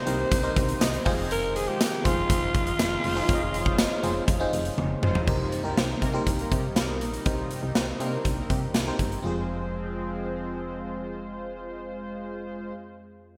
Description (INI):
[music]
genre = 1980s-style pop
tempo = 121 BPM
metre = 4/4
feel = straight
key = F minor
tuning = A4 = 438 Hz
[part]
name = breathy alto saxophone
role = melody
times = 0.0-4.8 s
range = F4 to C5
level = -32 LUFS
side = equal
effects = delay
[part]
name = FM electric piano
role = accompaniment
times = 0.0-13.4 s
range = F2 to Ab5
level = -34 LUFS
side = equal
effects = chorus, phaser
[part]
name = chorused pulse-width pad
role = sustained chords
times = 0.0-12.7 s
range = C3 to Eb4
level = -39 LUFS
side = equal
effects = none
[part]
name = analog synth brass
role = stabs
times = 0.1-12.7 s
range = F3 to C5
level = -39 LUFS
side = equal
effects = chorus
[part]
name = solid FM bass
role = bass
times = 0.1-12.7 s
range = F1 to C3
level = -35 LUFS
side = equal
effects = none
[part]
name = big rock drum kit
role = drums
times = 0.1-9.2 s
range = crash cymbal, hi-hat, kick drum, snare drum, tambourine, toms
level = -29 LUFS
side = equal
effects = gated reverb
[sound]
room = moderate lush hall reverb, RT60 1.9 s, studio ambience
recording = bright 1980s-style digital production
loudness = -27 LUFS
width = mono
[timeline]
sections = 0.0-5.3 A section; 5.3-9.2 B section; 9.2-13.2 C section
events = FM electric piano fill 0.6-1.3; drum fill 4.8-5.3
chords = 0.0 Cm7; 1.1 Fm7; 5.3 Cm7; 9.2 Fm